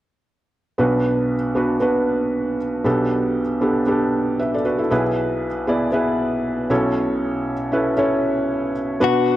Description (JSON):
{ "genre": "pop", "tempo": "117 BPM", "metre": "4/4", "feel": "swing 56% on 16ths", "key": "B minor", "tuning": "A4 = 440 Hz", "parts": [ { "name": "felt-muted upright piano", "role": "accompaniment", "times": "0.8-9.4 s", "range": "B1 to E5", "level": "-18 LUFS", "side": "right 1 dB", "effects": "none" }, { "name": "direct-recorded clean electric guitar", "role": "melody", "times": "9.0-9.4 s", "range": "F#4", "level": "-18 LUFS", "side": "left 12 dB", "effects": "none" } ], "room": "light reverb, small room ambience", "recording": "dry, close 1970s-style studio recording", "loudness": "-18 LUFS", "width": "side -14 dB against mid", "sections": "0.8-9.0 A section", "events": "none", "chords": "0.8 Bm; 2.8 Gadd9/B; 4.9 E/B; 6.7 A/B" }